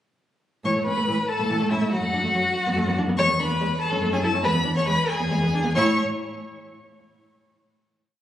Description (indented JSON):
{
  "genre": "quick classical-period movement for string quartet",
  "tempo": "94 BPM (dotted quarters)",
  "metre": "6/8",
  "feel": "straight",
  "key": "A major",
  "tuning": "A4 = 436 Hz",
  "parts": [
    { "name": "warm cello", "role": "bass", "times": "0.6-6.0 s", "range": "E2 to A2", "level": "-26 LUFS", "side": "equal", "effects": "none" },
    { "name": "rich violin", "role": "melody", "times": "0.7-6.0 s", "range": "E5 to C#6", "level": "-27 LUFS", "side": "left 3 dB", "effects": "none" },
    { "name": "warm violin", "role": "second line", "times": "0.7-6.0 s", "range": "E4 to C#5", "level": "-26 LUFS", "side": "left 1 dB", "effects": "none" },
    { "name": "rich viola", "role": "accompaniment", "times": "0.7-6.0 s", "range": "E3 to E4", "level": "-28 LUFS", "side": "equal", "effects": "none" }
  ],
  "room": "moderate scoring stage reverb, RT60 1.9 s",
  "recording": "recorded on a phone in the room, club reverb, compression",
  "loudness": "-20 LUFS",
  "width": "side -11 dB against mid",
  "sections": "0.7-5.8 A section; 5.8-7.0 final chord",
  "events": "none",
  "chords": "0.7 A5; 1.9 D/F# (rootless); 2.6 B5/F#; 3.2 E5; 3.8 F#m; 4.4 E; 5.8 A5"
}